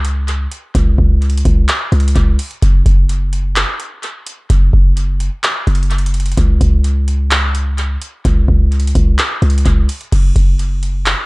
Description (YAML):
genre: hip hop, trap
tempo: 128 BPM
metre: 4/4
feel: half-time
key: unclear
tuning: A4 = 437 Hz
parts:
  - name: warm 808-style bass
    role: bass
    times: 0.0-11.1 s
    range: F#1 to C#2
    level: -13 LUFS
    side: equal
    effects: none
  - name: booming analog drum machine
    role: drums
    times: 0.0-11.2 s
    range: crash cymbal, handclaps, hi-hat, kick drum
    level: -14 LUFS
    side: equal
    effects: vintage 12-bit sampler grit, tape echo
room: little or no reverb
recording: echo-heavy mix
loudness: -12 LUFS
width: side -24 dB against mid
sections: 0.0-10.1 A section; 10.1-11.3 B section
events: none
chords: none